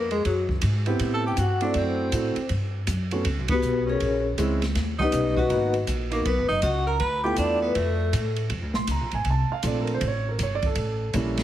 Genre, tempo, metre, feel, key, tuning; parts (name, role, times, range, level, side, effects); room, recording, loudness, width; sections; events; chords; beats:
jazz, small-group swing and bop; 160 BPM; 4/4; swing 64% on 8ths; A4 = 439 Hz
vibraphone with medium mallets; melody; 0.0-8.3 s; B3 to B5; -26 LUFS; left 3 dB
breathy tenor saxophone; second line; 0.0-8.3 s; F#3 to B4; -30 LUFS; right 2 dB
upright bass; bass; 0.0-11.4 s; F#1 to A2; -27 LUFS; equal
open jazz drum kit; drums; 0.1-11.4 s; hi-hat, kick drum, ride cymbal, snare drum; -32 LUFS; right 1 dB
warm grand piano; accompaniment; 0.9-11.4 s; G3 to C6; -28 LUFS; right 3 dB
moderate echo chamber reverb, RT60 1.9 s; heavily compressed radio sound; -22 LUFS; side -12 dB against mid
0.0-8.5 A section; 8.5-11.4 B section
band accent 3.4
0.0 D#madd9 (rootless); 1.0 Am9; 1.7 F#m7b5; 2.5 Gmaj7#11; 4.0 A#m7b5; 4.7 D#7alt; 5.5 G#m7; 7.0 Dm69; 7.8 F; 8.5 Bbmaj7; 10.0 A7b9
0.25 0.62 | 1.00 1.38 1.75 2.12 | 2.50 2.87 3.25 3.62 | 4.00 4.37 4.75 5.12 | 5.50 5.87 6.25 6.62 | 7.00 7.38 7.75 8.13 | 8.50 8.88 9.26 9.63 | 10.01 10.38 10.76 11.14